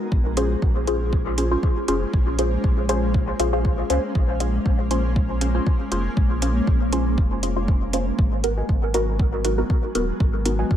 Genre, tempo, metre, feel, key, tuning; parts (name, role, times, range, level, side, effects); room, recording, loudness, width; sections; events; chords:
dub techno; 119 BPM; 4/4; swing 53% on 16ths; A4 = 440 Hz
granular cloud pad; sustained chords; 0.0-10.8 s; F#3 to C#4; -29 LUFS; left 1 dB; built-in reverb, sidechain pumping
filtered dub chord stab; stabs; 0.0-10.6 s; B3 to B#4; -25 LUFS; equal; phaser, dub echo
warm sub bass; bass; 0.1-10.8 s; D#1 to C#2; -24 LUFS; equal; sidechain pumping
electronic kick drum; drums; 0.1-10.8 s; -20 LUFS; equal
electronic hi-hat; drums; 0.4-10.6 s; -30 LUFS; right 1 dB; overdrive
filtered dub chord stab; riff; 8.6-10.8 s; F#4 to G#5; -34 LUFS; equal; chorus, sidechain pumping, dub echo
light reverb, digital ambience; -19 LUFS; side -10 dB against mid
0.0-10.8 A section
filter sweep on synth stab 0.0-10.8
0.1 A#m7; 8.2 G#m7